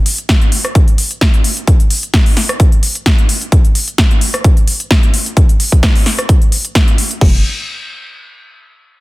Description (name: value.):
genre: bass house.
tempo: 130 BPM.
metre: 4/4.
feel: swing 54% on 16ths.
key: unclear.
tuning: A4 = 440 Hz.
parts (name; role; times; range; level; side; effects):
big-room dance drum kit; drums; 0.1-7.3 s; crash cymbal, hi-hat, rim click, snare drum; -16 LUFS; equal; none.
electronic kick drum; drums; 0.3-7.3 s; none; -10 LUFS; equal; none.
hollow knocking FM bass; bass; 7.2-7.4 s; F1; -17 LUFS; equal; overdrive, sidechain pumping.
room: little or no reverb.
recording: dense, heavily limited modern master.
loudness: -9 LUFS.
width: side -20 dB against mid.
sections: 0.0-7.2 A section; 7.2-9.0 B section.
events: none.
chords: none.